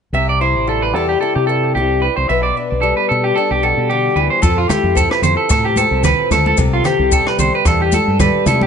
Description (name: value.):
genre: highlife guitar band.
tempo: 112 BPM.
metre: 4/4.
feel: swing 55% on 16ths.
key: C major.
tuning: A4 = 440 Hz.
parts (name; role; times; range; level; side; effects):
picked acoustic archtop guitar; accompaniment; 0.1-8.7 s; G2 to C5; -21 LUFS; left 8 dB; none.
electric guitar at the edge of break-up; arpeggios; 0.1-8.7 s; F4 to E5; -16 LUFS; right 2 dB; tape echo.
fingered electric bass; bass; 0.1-8.7 s; A1 to C3; -19 LUFS; equal; none.
compact cocktail drum kit; drums; 4.4-8.6 s; hi-hat, kick drum, rim click; -19 LUFS; equal; none.
maracas; percussion; 4.4-8.6 s; none; -25 LUFS; left 6 dB; none.
congas; percussion; 4.7-8.7 s; none; -21 LUFS; right 3 dB; none.
room: light reverb.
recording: nothing above 10.7 kHz.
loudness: -13 LUFS.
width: side -7 dB against mid.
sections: 0.1-4.4 A section; 4.4-8.7 B section.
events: none.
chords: 0.1 C; 2.3 G/B; 4.4 Fmaj7; 6.6 C6.